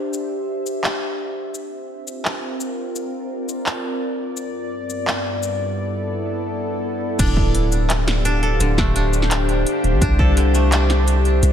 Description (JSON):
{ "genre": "half-time drum and bass", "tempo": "170 BPM", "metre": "4/4", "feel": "half-time", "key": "D minor", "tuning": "A4 = 439 Hz", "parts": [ { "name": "bowed-like drone", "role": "sustained chords", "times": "0.0-11.5 s", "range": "G2 to F5", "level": "-23 LUFS", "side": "left 1 dB", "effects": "built-in reverb, sidechain pumping" }, { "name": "drum and bass drum kit", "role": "drums", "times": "0.1-11.5 s", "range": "crash cymbal, handclaps, hi-hat, shaker, snare drum", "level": "-25 LUFS", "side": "equal", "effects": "none" }, { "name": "koto", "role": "arpeggios", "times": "7.2-11.5 s", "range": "D3 to A4", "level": "-25 LUFS", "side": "right 1 dB", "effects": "diffuse ambient delay" }, { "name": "long sustained 808-style bass", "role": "bass", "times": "7.2-11.5 s", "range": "D1 to C2", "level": "-18 LUFS", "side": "equal", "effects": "none" }, { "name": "electronic kick drum", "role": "drums", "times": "7.2-10.3 s", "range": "none", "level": "-19 LUFS", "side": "equal", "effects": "none" } ], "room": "light reverb, digital ambience", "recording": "none", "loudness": "-18 LUFS", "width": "side -9 dB against mid", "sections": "0.0-7.2 A section; 7.2-11.5 B section", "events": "filter sweep on synth drone 0.0-7.2; drop 7.2-11.5", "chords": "0.0 Cadd9; 1.5 Bbadd9; 4.4 G; 7.2 Dm; 10.0 Cadd9", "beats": "| 0.13 0.48 0.84 1.19 | 1.54 1.90 2.25 2.60 | 2.96 3.31 3.66 4.01 | 4.37 4.72 5.07 5.43 | 5.78 6.13 6.49 6.84 | 7.19 7.54 7.90 8.25 | 8.60 8.96 9.31 9.66 | 10.02 10.37 10.72 11.07 | 11.43" }